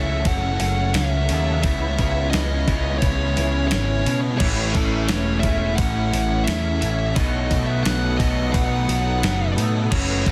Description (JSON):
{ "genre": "rock, shoegaze and dream pop", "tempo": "87 BPM", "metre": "4/4", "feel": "straight", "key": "unclear", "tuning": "A4 = 440 Hz", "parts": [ { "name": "fuzz lead guitar", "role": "melody", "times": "0.0-10.3 s", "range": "A4 to F#5", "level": "-30 LUFS", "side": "equal", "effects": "distortion, tape echo" }, { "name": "evolving wavetable pad", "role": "sustained chords", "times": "0.0-10.3 s", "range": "B4 to D#6", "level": "-38 LUFS", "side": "equal", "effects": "chorus, built-in reverb" }, { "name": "fingerpicked twelve-string acoustic guitar", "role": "arpeggios", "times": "0.0-10.3 s", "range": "E3 to A4", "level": "-37 LUFS", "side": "equal", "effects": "none" }, { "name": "biting overdriven guitar", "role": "riff", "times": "0.0-10.3 s", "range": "F#2 to E4", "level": "-30 LUFS", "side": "equal", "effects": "ensemble chorus" }, { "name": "electric guitar through a small old amp", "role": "riff", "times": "0.0-10.3 s", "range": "F#2 to F#4", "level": "-33 LUFS", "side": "equal", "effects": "none" }, { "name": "growling picked electric bass", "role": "bass", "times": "0.0-10.3 s", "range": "E1 to B2", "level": "-25 LUFS", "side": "equal", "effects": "overdrive" }, { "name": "crisp 8-bit digital drum machine", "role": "drums", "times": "0.3-10.3 s", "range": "crash cymbal, hi-hat, kick drum, snare drum", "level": "-26 LUFS", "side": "equal", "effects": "none" }, { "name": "raw garage guitar", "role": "riff", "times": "4.4-10.3 s", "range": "F#2 to B3", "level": "-30 LUFS", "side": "equal", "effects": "overdrive" } ], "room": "little or no reverb", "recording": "dense, heavily limited modern master", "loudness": "-21 LUFS", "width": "mono", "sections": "0.0-10.3 A section", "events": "none", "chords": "0.0 F#m7; 1.6 C#m7; 4.4 Amaj7; 7.2 B7", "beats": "0.26 0.95 | 1.65 2.34 3.03 3.72 | 4.41 5.10 5.79 6.49 | 7.18 7.87 8.56 9.24 | 9.94" }